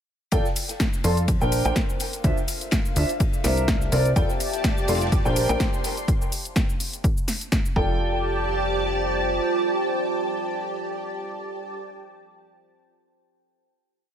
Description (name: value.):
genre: piano house.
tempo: 125 BPM.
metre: 4/4.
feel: swing 55% on 16ths.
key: F major.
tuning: A4 = 439 Hz.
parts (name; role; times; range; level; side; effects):
warm upright piano; riff; 0.3-11.7 s; D4 to C6; -27 LUFS; equal; lush chorus, sidechain pumping, tape echo.
plucky analog bass; bass; 0.3-9.4 s; F1 to F2; -25 LUFS; equal; sidechain pumping.
electronic kick drum; drums; 0.3-7.9 s; none; -24 LUFS; equal; none.
house drum kit; drums; 0.3-7.7 s; hi-hat, shaker, snare drum; -28 LUFS; equal; none.
open jazz drum kit; drums; 0.3-6.0 s; ride cymbal, snare drum; -40 LUFS; left 5 dB; high-pass filter on cymbals, high-pass filter on snare, high-pass filter on room.
deep dark ambient pad; texture; 1.0-12.2 s; C4 to A5; -31 LUFS; right 2 dB; chorus, built-in reverb, sidechain pumping.
analog string pad; sustained chords; 4.4-11.7 s; G4 to C6; -28 LUFS; right 1 dB; ensemble chorus, sidechain pumping.
room: light reverb.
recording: none.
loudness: -21 LUFS.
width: side -9 dB against mid.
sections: 0.3-8.0 drop; 8.0-11.8 final chord.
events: drop 0.3-8.0.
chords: 0.3 F69; 1.3 Bb69; 2.2 Dm9; 3.2 C9; 4.2 F69; 5.1 Bb69; 6.1 N.C.; 7.8 F69.